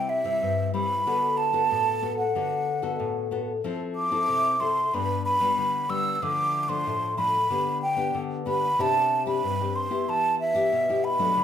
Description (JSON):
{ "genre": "samba", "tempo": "93 BPM", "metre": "4/4", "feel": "straight", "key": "G major", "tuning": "A4 = 440 Hz", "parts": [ { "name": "breathy mellow concert flute", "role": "melody", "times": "0.0-11.4 s", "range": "E5 to E6", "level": "-24 LUFS", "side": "right 2 dB", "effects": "none" }, { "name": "nylon-string guitar", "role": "accompaniment", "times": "0.0-11.4 s", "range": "G2 to A4", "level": "-28 LUFS", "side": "left 5 dB", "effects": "none" } ], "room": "wet large studio reverb, RT60 0.9 s", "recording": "band playing live in one room", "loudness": "-23 LUFS", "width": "side -9 dB against mid", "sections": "0.0-11.4 A section", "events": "none", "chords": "0.0 C; 1.1 D6; 3.6 Fmaj7; 4.9 G; 6.2 Dm; 7.5 G/D; 8.8 Csus2; 10.1 Em" }